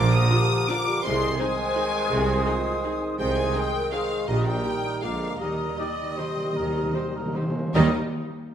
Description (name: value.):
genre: classical.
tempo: 145-179 BPM.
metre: 3/4.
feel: rubato.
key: Eb major.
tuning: A4 = 441 Hz.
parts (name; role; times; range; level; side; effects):
warm studio violin section; melody; 0.0-8.0 s; Eb5 to Eb6; -32 LUFS; left 4 dB; none.
flute section; second line; 0.0-8.0 s; D6 to Eb6; -35 LUFS; left 6 dB; none.
mellow cor anglais; second line; 0.0-7.9 s; Bb4 to D5; -33 LUFS; right 2 dB; none.
warm studio violin section; second line; 0.0-8.0 s; Eb4 to Eb6; -35 LUFS; left 2 dB; none.
dark bassoon; accompaniment; 0.0-7.9 s; F3 to Ab3; -32 LUFS; right 2 dB; none.
bright trombone section; sustained chords; 0.0-7.9 s; D3 to Ab3; -36 LUFS; right 3 dB; none.
dark French horn section; sustained chords; 0.0-7.9 s; Bb3 to C5; -31 LUFS; left 3 dB; none.
rich studio double bass section; bass; 0.0-8.0 s; Bb1 to Eb2; -29 LUFS; right 3 dB; none.
warm studio cello section; bass; 0.0-8.0 s; Bb2 to Eb3; -30 LUFS; right 2 dB; none.
warm tuba; bass; 0.0-7.9 s; Bb1 to Eb2; -32 LUFS; right 3 dB; none.
rich studio viola section; accompaniment; 0.3-8.0 s; G3 to Ab4; -34 LUFS; right 1 dB; none.
timpani; percussion; 4.3-7.9 s; Bb2 to Eb3; -30 LUFS; equal; none.
room: moderate scoring stage reverb, RT60 1.7 s.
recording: none.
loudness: -22 LUFS.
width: side -9 dB against mid.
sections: 0.0-7.7 A section.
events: slowing down 4.8-7.7; timpani fill 5.4-7.7.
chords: 0.0 Bb; 1.0 Ab/C; 4.3 Eb/Bb; 5.0 Bb7; 5.4 Eb.